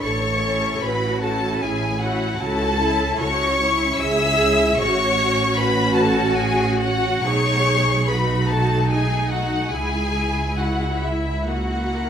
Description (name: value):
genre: classical, slow romantic movement for string orchestra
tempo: 74 BPM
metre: 3/4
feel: uneven beats, rubato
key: A major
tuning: A4 = 439 Hz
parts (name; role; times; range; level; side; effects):
- rich studio violin section; melody; 0.0-12.1 s; E5 to E6; -23 LUFS; left 3 dB; none
- rich chamber violin section; second line; 0.0-12.1 s; E4 to E5; -25 LUFS; left 1 dB; none
- rich chamber cello section; bass; 0.0-12.1 s; D#4 to A#4; -27 LUFS; right 2 dB; none
- rich chamber double bass section; bass; 0.0-12.1 s; A1 to C#2; -24 LUFS; right 2 dB; none
- rich studio viola section; accompaniment; 0.4-12.1 s; G#3 to F#4; -26 LUFS; equal; none
room: moderate recital hall reverb, RT60 1.6 s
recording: none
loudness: -18 LUFS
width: side -8 dB against mid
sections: 0.0-12.1 A section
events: none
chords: 0.0 A; 2.4 A/C#; 4.8 F#m/A; 7.3 B7; 9.7 C#m; 11.5 F#7/C#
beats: | 0.03 0.82 1.61 | 2.40 3.19 4.00 | 4.80 5.58 6.38 | 7.25 8.09 8.90 | 9.72 10.57 11.47